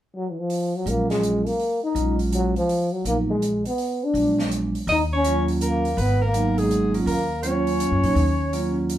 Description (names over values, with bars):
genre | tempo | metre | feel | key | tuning
jazz, small-group swing and bop | 164 BPM | 3/4 | swing 65% on 8ths | Eb minor | A4 = 440 Hz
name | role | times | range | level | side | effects
breathy trombone | melody | 0.1-8.9 s | Fb3 to Eb4 | -24 LUFS | left 1 dB | none
open jazz drum kit | drums | 0.5-9.0 s | hi-hat, snare drum | -36 LUFS | right 2 dB | none
vibraphone with soft mallets | accompaniment | 0.9-9.0 s | Gb3 to F4 | -25 LUFS | right 3 dB | none
upright bass | bass | 0.9-9.0 s | Ab1 to Bb2 | -26 LUFS | equal | none
breathy tenor saxophone | second line | 4.9-8.8 s | Ab4 to Eb5 | -27 LUFS | right 2 dB | none
room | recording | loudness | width
moderate studio reverb, RT60 0.6 s | band playing live in one room | -20 LUFS | side -12 dB against mid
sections
0.5-4.9 A section; 4.9-9.0 B section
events
none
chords
0.5 Ebm11/Bb (rootless); 2.7 Abm9; 3.8 Bb7b9b13; 4.9 Ebm7; 6.0 Abm7; 7.1 Ebm7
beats
0.12 | 0.49 0.86 1.22 | 1.59 1.95 2.32 | 2.69 3.05 3.42 | 3.78 4.15 4.51 | 4.88 5.24 5.61 | 5.97 6.34 6.70 | 7.07 7.43 7.79 | 8.16 8.52 8.89